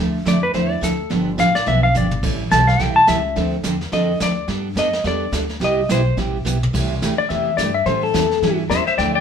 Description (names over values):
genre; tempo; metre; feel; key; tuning
country, western swing; 213 BPM; 4/4; swing 59% on 8ths; C major; A4 = 440 Hz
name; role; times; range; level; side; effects
picked steel-string acoustic guitar; accompaniment; 0.0-9.2 s; C3 to A4; -22 LUFS; right 3 dB; none
upright bass; bass; 0.0-9.2 s; G1 to A2; -23 LUFS; equal; none
clean lap steel guitar; melody; 0.3-6.2 s; A4 to A5; -18 LUFS; left 2 dB; none
vintage brush drum kit; drums; 0.3-9.2 s; brushed snare drum, crash cymbal, hi-hat, kick drum, snare drum, toms; -27 LUFS; equal; none
clean lap steel guitar; second line; 7.2-9.2 s; A4 to G5; -18 LUFS; left 8 dB; none
room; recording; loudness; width
moderate studio reverb, RT60 0.8 s; band playing live in one room; -16 LUFS; side -7 dB against mid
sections
0.0-6.7 A section; 6.7-9.2 A section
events
electric slide guitar solo 0.0-6.7, 6.7-9.2; drum fill 1.9, 6.5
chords
0.0 Dmadd9; 1.1 G7; 2.2 Am7; 3.4 Dm7; 4.5 Gadd9; 5.6 Cmaj7; 6.7 C6; 7.9 A7